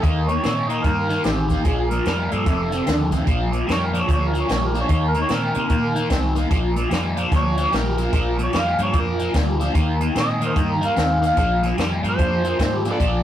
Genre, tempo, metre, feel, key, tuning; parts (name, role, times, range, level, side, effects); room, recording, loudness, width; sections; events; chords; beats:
electric blues shuffle; 148 BPM; 4/4; swing 63% on 8ths; A4 = 441 Hz
overdriven harmonica; melody; 0.0-13.2 s; G4 to Bb5; -24 LUFS; right 1 dB
overdriven electric guitar; riff; 0.0-13.2 s; F2 to C4; -22 LUFS; left 1 dB; phaser
vintage muted fingered electric bass; bass; 0.0-13.2 s; F1 to C3; -24 LUFS; equal
compact cocktail drum kit; drums; 0.0-13.1 s; hi-hat, kick drum, snare drum; -23 LUFS; equal
moderate studio reverb, RT60 0.6 s; rough rehearsal-room recording, warm saturation; -18 LUFS; side -11 dB against mid
0.0-3.3 A section; 3.3-13.2 B section
harmonica solo 3.3-13.2
0.0 Eb7; 1.7 Bb5; 2.5 F7; 3.3 Bb; 4.9 Eb5; 6.5 Bb; 9.8 Eb; 11.4 Bb7(no3)
| 0.04 0.44 0.84 1.25 | 1.65 2.06 2.46 2.87 | 3.27 3.68 4.08 4.49 | 4.89 5.30 5.70 6.11 | 6.51 6.92 7.32 7.72 | 8.13 8.54 8.94 9.35 | 9.75 10.16 10.56 10.97 | 11.38 11.78 12.19 12.60 | 13.00